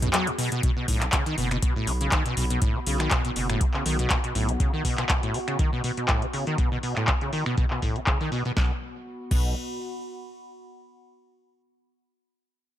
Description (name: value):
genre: acid house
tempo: 121 BPM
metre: 4/4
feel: swing 54% on 16ths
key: unclear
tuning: A4 = 439 Hz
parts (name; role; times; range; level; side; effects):
- string machine, full ensemble; sustained chords; 0.0-0.6 s; B3 to G#4; -39 LUFS; right 2 dB; ensemble chorus, sidechain pumping
- acid bass, saw; riff; 0.0-9.5 s; A2 to F#3; -28 LUFS; equal; overdrive, ensemble chorus, ping-pong delay
- saturated sub bass; bass; 0.0-4.6, 8.6-9.5 s; F#1 to B1; -28 LUFS; equal; sidechain pumping
- electro analog drum machine; drums; 0.0-9.4 s; crash cymbal, finger snaps, handclaps, hi-hat, rim click, snare drum, toms; -28 LUFS; left 1 dB; low-pass filter on snare, low-pass filter on hats, low-pass filter on toms, low-pass filter on cymbals, low-pass filter on room
- electronic kick drum; drums; 0.6-9.4 s; none; -25 LUFS; equal; none
- warbly tape-like pad; texture; 0.6-10.5 s; B3 to C#6; -37 LUFS; equal; chorus, built-in reverb, sidechain pumping
room: little or no reverb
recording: none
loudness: -23 LUFS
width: side -12 dB against mid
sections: 0.6-8.6 A section; 8.6-10.6 B section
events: fade-out on ambient pad 0.6-8.6; filter sweep on acid bass 0.6-8.6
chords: 0.0 B5